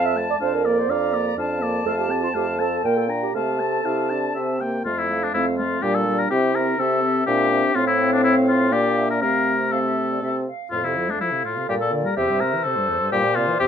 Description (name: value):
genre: quick classical-period movement for wind quintet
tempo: 124 BPM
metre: 3/4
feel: straight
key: F major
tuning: A4 = 439 Hz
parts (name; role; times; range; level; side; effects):
- silver concert flute; melody; 0.0-13.7 s; C5 to Bb5; -29 LUFS; left 4 dB; none
- warm oboe; second line; 0.0-13.7 s; D4 to Bb5; -23 LUFS; left 4 dB; none
- dark clarinet; accompaniment; 0.0-13.7 s; A3 to E5; -25 LUFS; right 5 dB; none
- warm French horn; accompaniment; 0.0-13.7 s; E2 to E4; -27 LUFS; left 2 dB; none
- mellow bassoon; bass; 0.0-13.7 s; F2 to C3; -25 LUFS; right 2 dB; none
room: moderate studio reverb, RT60 0.6 s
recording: minimal, uncompressed stereo recording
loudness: -19 LUFS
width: side -8 dB against mid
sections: 0.0-4.9 A section; 4.9-13.7 B section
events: none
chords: 0.4 Bb/F; 1.9 F; 2.8 Gm/Bb; 3.3 F/C; 4.4 C; 4.9 F; 5.8 Gm/Bb; 6.3 C; 7.3 C7/Bb; 7.8 F/A; 8.7 Gm/Bb; 9.2 F/C; 10.7 F; 11.7 Gm; 12.2 C/E; 13.1 C7/G